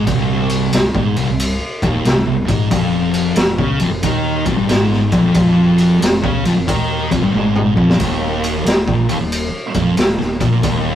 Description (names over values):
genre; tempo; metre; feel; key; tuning
stoner and doom metal; 91 BPM; 4/4; swing 65% on 8ths; unclear; A4 = 439 Hz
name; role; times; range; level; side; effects
thick fuzz guitar; riff; 0.0-10.9 s; C2 to Eb3; -15 LUFS; equal; distortion
fuzz fingered electric bass; bass; 0.0-10.9 s; C1 to Eb2; -26 LUFS; equal; overdrive
raw garage drum kit; drums; 0.1-10.8 s; kick drum, ride cymbal, snare drum, toms; -18 LUFS; equal; none
room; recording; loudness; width
moderate small room reverb, RT60 0.6 s; rough rehearsal-room recording; -13 LUFS; side -10 dB against mid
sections
0.0-10.9 A section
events
drum fill 7.3-8.0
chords
0.0 Cm; 2.7 Fm7; 8.0 Eb5